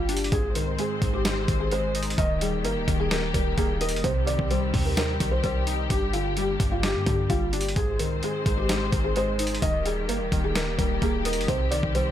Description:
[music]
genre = hip hop, trap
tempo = 129 BPM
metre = 4/4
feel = half-time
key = unclear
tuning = A4 = 439 Hz
[part]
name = felt-muted upright piano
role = melody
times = 0.0-12.1 s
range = F4 to Eb5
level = -29 LUFS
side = equal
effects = tape echo
[part]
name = warbly lo-fi synth keys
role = accompaniment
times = 0.0-12.1 s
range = G2 to Eb5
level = -30 LUFS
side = left 1 dB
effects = chorus
[part]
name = dark symphonic string section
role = sustained chords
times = 0.0-12.1 s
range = D3 to C5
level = -32 LUFS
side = left 3 dB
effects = none
[part]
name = clean 808-style bass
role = bass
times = 0.0-12.1 s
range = Eb1 to G2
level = -29 LUFS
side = equal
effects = none
[part]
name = boom bap sampler-style drum kit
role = drums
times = 0.1-12.1 s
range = hi-hat, kick drum, snare drum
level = -27 LUFS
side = equal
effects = overdrive
[sound]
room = little or no reverb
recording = none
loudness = -23 LUFS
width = side -11 dB against mid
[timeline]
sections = 0.0-12.1 A section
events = none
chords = 0.3 Ab; 2.2 Eb; 4.0 Cm; 5.9 Gm; 7.8 Ab; 9.6 Eb; 11.5 Cm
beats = | 0.32 0.79 1.25 1.72 | 2.18 2.65 3.11 3.58 | 4.04 4.51 4.97 5.44 | 5.90 6.37 6.83 7.30 | 7.76 8.23 8.69 9.16 | 9.62 10.09 10.55 11.02 | 11.48 11.95

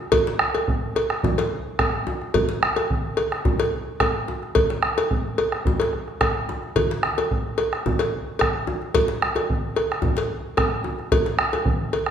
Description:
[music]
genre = west african traditional, West African drum ensemble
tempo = 109 BPM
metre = 4/4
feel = straight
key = none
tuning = none
[part]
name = bombo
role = percussion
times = 0.1-12.1 s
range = none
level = -23 LUFS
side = right 2 dB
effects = none
[part]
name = cowbell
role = percussion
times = 0.1-12.1 s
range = none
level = -24 LUFS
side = left 1 dB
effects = none
[part]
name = djembe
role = percussion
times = 0.1-12.0 s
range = none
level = -28 LUFS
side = left 2 dB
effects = none
[sound]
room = wet recital hall reverb, RT60 1.4 s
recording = studio ambience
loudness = -20 LUFS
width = side -8 dB against mid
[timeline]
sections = 0.0-12.1 A section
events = speeding up 0.0-12.1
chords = none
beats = | 0.12 0.68 1.23 1.79 | 2.35 2.90 3.46 4.01 | 4.56 5.11 5.66 6.21 | 6.76 7.31 7.85 8.40 | 8.95 9.49 10.03 10.58 | 11.12 11.66

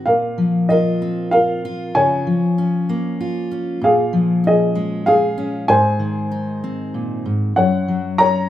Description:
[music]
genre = acoustic folk-pop ballad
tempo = 96 BPM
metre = 3/4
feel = straight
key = unclear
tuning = A4 = 443 Hz
[part]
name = fingerpicked steel-string acoustic guitar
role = accompaniment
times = 0.0-8.5 s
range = Gb2 to Ab4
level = -19 LUFS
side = left 1 dB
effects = plate reverb
[part]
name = dark upright piano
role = melody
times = 0.1-8.5 s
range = Ab4 to Bb5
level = -17 LUFS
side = equal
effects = plate reverb
[sound]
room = wet small room reverb, RT60 0.5 s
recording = rough home demo mix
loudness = -16 LUFS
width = side -12 dB against mid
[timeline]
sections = 0.1-8.5 A section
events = none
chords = 0.1 Bbsus2; 1.9 Db6; 3.8 Bbm7; 5.7 Ab; 7.6 Gb5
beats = | 0.07 0.69 1.32 | 1.95 2.57 3.19 | 3.82 4.44 5.06 | 5.68 6.30 6.93 | 7.56 8.19

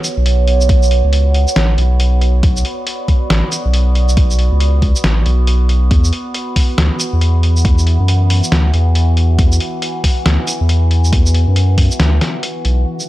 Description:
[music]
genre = deep dubstep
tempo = 138 BPM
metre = 4/4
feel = swing 61% on 16ths, half-time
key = unclear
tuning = A4 = 440 Hz
[part]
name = overtone-sweeping drone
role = sustained chords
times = 0.0-13.1 s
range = B2 to D5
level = -22 LUFS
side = right 2 dB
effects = chorus, built-in reverb
[part]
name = trip hop sampler-style drum kit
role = drums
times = 0.0-13.1 s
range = hi-hat, shaker, snare drum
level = -19 LUFS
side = left 1 dB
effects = studio reverb
[part]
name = saturated sub bass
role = bass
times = 0.2-12.9 s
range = A1 to F#2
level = -12 LUFS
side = equal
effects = tube saturation
[part]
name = electronic kick drum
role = drums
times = 0.7-11.9 s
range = none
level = -13 LUFS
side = equal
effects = overdrive, studio reverb
[sound]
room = digital ambience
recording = dry, gritty hardware recording, transformer saturation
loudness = -11 LUFS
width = side -16 dB against mid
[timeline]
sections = 0.0-12.9 A section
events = none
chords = 0.0 Bm; 5.9 E5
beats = 0.26 | 0.69 1.13 1.56 2.00 | 2.43 2.87 3.30 3.73 | 4.17 4.61 5.04 5.47 | 5.91 6.34 6.78 7.21 | 7.65 8.08 8.52 8.95 | 9.39 9.82 10.26 10.69 | 11.13 11.56 12.00 12.43 | 12.87

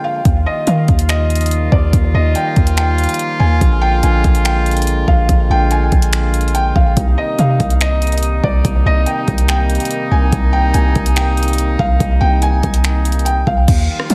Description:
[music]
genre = hip hop, atmospheric cloud-rap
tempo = 143 BPM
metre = 4/4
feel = half-time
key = C minor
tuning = A4 = 440 Hz
[part]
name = felt-muted upright piano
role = melody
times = 0.0-13.7 s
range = D5 to Ab5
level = -23 LUFS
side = equal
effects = tape echo
[part]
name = warm brass ensemble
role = sustained chords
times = 0.0-14.1 s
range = C3 to F4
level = -23 LUFS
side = equal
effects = sidechain pumping
[part]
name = warm 808-style bass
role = bass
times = 0.3-14.1 s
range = Bb1 to Eb3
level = -16 LUFS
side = equal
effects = none
[part]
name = smooth R&B drum kit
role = drums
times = 0.3-14.1 s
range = crash cymbal, finger snaps, hi-hat, kick drum, rim click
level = -20 LUFS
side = equal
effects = overdrive
[sound]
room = light reverb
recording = none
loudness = -14 LUFS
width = mono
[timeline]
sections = 0.3-13.7 A section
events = none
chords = 0.3 Ebadd9; 3.6 Bb7; 7.0 Cm7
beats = | 0.25 0.67 1.09 1.51 | 1.93 2.35 2.77 3.19 | 3.61 4.03 4.45 4.87 | 5.29 5.71 6.13 6.55 | 6.97 7.39 7.81 8.23 | 8.65 9.06 9.48 9.90 | 10.32 10.74 11.16 11.58 | 12.00 12.42 12.84 13.26 | 13.68 14.10

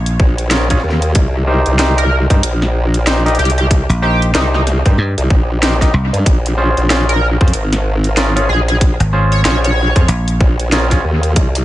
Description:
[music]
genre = glitch hop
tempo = 94 BPM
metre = 4/4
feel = swing 60% on 16ths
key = Bb dorian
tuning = A4 = 440 Hz
[part]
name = dry thumbed slap bass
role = bass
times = 0.0-10.4 s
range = Ab1 to G2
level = -14 LUFS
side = equal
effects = none
[part]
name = drum and bass drum kit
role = drums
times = 0.1-11.6 s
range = hi-hat, snare drum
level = -20 LUFS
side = equal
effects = studio reverb, dub echo
[part]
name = formant-sweep wobble bass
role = bass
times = 0.2-11.6 s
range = Ab1 to G2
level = -14 LUFS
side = equal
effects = chorus, overdrive
[part]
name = electronic kick drum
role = drums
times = 0.2-11.5 s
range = none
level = -12 LUFS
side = equal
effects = studio reverb
[part]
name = overdriven clav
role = stabs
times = 0.5-11.0 s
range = Db4 to Eb5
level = -20 LUFS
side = equal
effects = sidechain pumping, dub echo
[part]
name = sync lead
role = melody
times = 2.0-10.1 s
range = Eb4 to Db5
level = -23 LUFS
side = equal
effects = analog chorus, dub echo
[sound]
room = light reverb, digital ambience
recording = echo-heavy mix, nothing above 11.0 kHz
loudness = -11 LUFS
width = side -15 dB against mid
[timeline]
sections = 0.0-11.6 A section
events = none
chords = 0.0 Bbm7; 1.2 Cm7; 6.3 Bbm7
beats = 0.52 | 1.15 1.79 2.43 3.07 | 3.71 4.34 4.98 5.62 | 6.26 6.90 7.54 8.17 | 8.81 9.45 10.09 10.73 | 11.37

